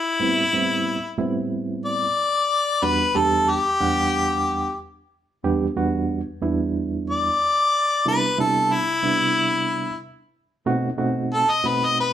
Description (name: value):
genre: blues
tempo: 92 BPM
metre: 4/4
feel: swing 54% on 16ths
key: E minor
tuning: A4 = 440 Hz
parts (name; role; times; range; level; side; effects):
- clear harmonica; melody; 0.0-12.1 s; E4 to D#5; -20 LUFS; left 2 dB; overdrive
- bright reed electric piano; accompaniment; 0.2-12.1 s; E2 to F#5; -23 LUFS; right 3 dB; fast tremolo
room: wet large studio reverb, RT60 0.9 s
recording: band playing live in one room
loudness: -19 LUFS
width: side -11 dB against mid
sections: 0.0-12.1 A section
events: harmonica solo 0.0-12.1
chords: 0.0 Am7; 2.8 Em7; 8.1 Cmaj7; 10.7 B7b9